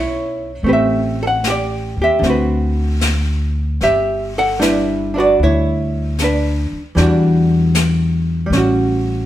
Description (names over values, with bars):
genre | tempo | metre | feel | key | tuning
jazz ballad | 77 BPM | 4/4 | swing 68% on 8ths | unclear | A4 = 441 Hz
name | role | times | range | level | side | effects
archtop guitar, miked and amplified | accompaniment | 0.0-9.3 s | D3 to F#5 | -16 LUFS | equal | none
upright bass | bass | 0.0-9.3 s | G1 to E2 | -18 LUFS | equal | none
jazz brush drum kit | drums | 0.7-9.3 s | brushed snare drum, hi-hat, snare drum | -24 LUFS | left 2 dB | none
room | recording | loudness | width
moderate stone room reverb, RT60 1.2 s | band playing live in one room | -14 LUFS | side -12 dB against mid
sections
0.0-9.3 A section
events
none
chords
0.0 F#7(no3); 0.7 Am7; 2.2 D6; 3.8 G6; 7.0 Em9; 8.5 A6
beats
| 0.66 1.45 2.23 3.03 | 3.82 4.62 5.41 6.19 | 6.97 7.75 8.52